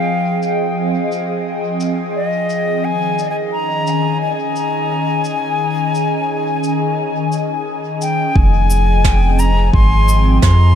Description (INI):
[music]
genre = ambient dub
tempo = 87 BPM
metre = 4/4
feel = swing 58% on 16ths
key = F minor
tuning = A4 = 441 Hz
[part]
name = silver concert flute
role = melody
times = 0.0-10.8 s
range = Eb5 to C6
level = -19 LUFS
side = left 2 dB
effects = dub echo
[part]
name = airy breathy pad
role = sustained chords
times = 0.0-10.8 s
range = Eb3 to Eb5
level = -19 LUFS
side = left 1 dB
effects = chorus, phaser
[part]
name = cabasa and snare drum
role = drums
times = 0.4-10.6 s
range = none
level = -26 LUFS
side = right 3 dB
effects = low-pass filter on snare, low-pass filter on perc, low-pass filter on room, dub echo
[part]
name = warm sub bass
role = bass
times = 8.4-10.7 s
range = F1 to F2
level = -12 LUFS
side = equal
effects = none
[part]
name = electronic kick drum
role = drums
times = 8.4-10.6 s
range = none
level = -14 LUFS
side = equal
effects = none
[sound]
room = light reverb, small room ambience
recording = none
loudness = -14 LUFS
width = side -9 dB against mid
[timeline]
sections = 0.0-8.4 A section; 8.4-10.8 B section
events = none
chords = 0.0 Fm7; 2.8 Eb7sus4; 8.4 Fm7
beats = | 0.08 0.77 1.46 2.15 | 2.84 3.53 4.22 4.91 | 5.60 6.29 6.98 7.67 | 8.36 9.04 9.73 10.42